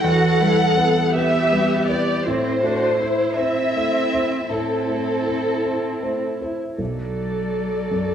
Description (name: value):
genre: neoclassical piano and strings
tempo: 54 BPM (dotted quarters)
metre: 6/8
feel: rubato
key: A dorian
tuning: A4 = 441 Hz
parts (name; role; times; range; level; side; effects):
- warm studio violin section; melody; 0.0-8.1 s; A4 to F#5; -22 LUFS; left 1 dB; none
- rich cello; second line; 0.0-8.1 s; F#3 to F#4; -26 LUFS; right 2 dB; none
- felt-muted upright piano; accompaniment; 0.0-8.1 s; B1 to C5; -23 LUFS; equal; none
- warm viola; accompaniment; 0.0-8.1 s; E4 to A4; -26 LUFS; right 1 dB; none
room: wet large studio reverb, RT60 1.2 s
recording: band playing live in one room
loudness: -18 LUFS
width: side -9 dB against mid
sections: 0.0-6.8 A section; 6.8-8.1 B section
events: none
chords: 0.0 Em; 2.3 Am; 6.8 Bm7